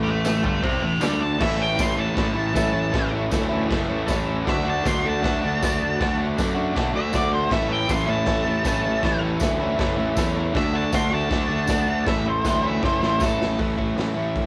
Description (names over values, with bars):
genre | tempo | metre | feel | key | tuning
garage rock duo or trio | 158 BPM | 4/4 | straight | A major | A4 = 441 Hz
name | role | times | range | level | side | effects
octave-fuzz lead guitar | melody | 0.0-13.6 s | A4 to C6 | -28 LUFS | equal | distortion, cassette tape, tape echo
overdriven electric guitar | riff | 0.0-14.5 s | G2 to F#4 | -27 LUFS | equal | cassette tape
fuzz picked electric bass | bass | 0.0-14.5 s | F#1 to F#2 | -30 LUFS | equal | overdrive
combo organ | sustained chords | 0.1-13.5 s | D4 to A5 | -38 LUFS | equal | none
raw garage drum kit | drums | 0.2-14.4 s | crash cymbal, hi-hat, kick drum, snare drum | -29 LUFS | equal | cassette tape
tambourine | percussion | 0.2-13.3 s | none | -41 LUFS | equal | none
room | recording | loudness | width
little or no reverb | home recording on cassette | -22 LUFS | mono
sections
0.0-1.4 A section; 1.4-13.6 B section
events
transistor combo organ fill 3.9-4.5; drum fill 12.8-13.6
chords
0.0 A; 1.0 D5; 1.4 A; 4.5 D; 7.5 A; 10.5 D; 12.1 A